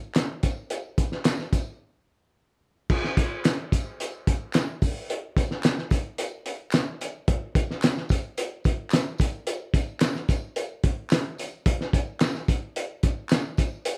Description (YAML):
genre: soul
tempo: 110 BPM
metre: 4/4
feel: straight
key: none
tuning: none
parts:
  - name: handclaps and tambourine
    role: percussion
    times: 0.1-14.0 s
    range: none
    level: -40 LUFS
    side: equal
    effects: none
  - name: cloth-damped thuddy drum kit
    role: drums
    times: 0.2-14.0 s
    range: crash cymbal, hi-hat, kick drum, snare drum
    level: -26 LUFS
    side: equal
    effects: none
room: light reverb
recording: dark, warm production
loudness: -26 LUFS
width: mono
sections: 0.0-2.9 A section; 2.9-14.0 B section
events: break 1.8-2.9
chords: none